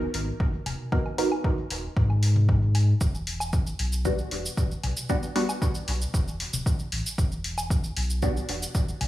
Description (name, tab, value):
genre	dub techno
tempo	115 BPM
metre	4/4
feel	straight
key	unclear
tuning	A4 = 440 Hz
part	filtered dub chord stab	stabs	0.0-8.5 s	G3 to A#4	-30 LUFS	right 1 dB	phaser, sidechain pumping, dub echo
part	warm sub bass	bass	0.0-9.1 s	D1 to G#2	-26 LUFS	equal	tube saturation, sidechain pumping
part	electronic hi-hat	drums	0.1-9.1 s	none	-33 LUFS	left 1 dB	none
part	electronic kick drum	drums	0.4-8.9 s	none	-26 LUFS	equal	none
part	electronic toms and woodblock	percussion	0.7-9.1 s	none	-35 LUFS	left 2 dB	sidechain pumping on toms, sidechain pumping on perc, dub echo
part	cabasa	percussion	3.0-9.0 s	none	-35 LUFS	right 1 dB	none
room	light reverb, digital ambience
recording	studio reverb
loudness	-24 LUFS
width	side -15 dB against mid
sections	0.0-9.1 A section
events	none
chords	0.0 G#m7; 3.0 Em7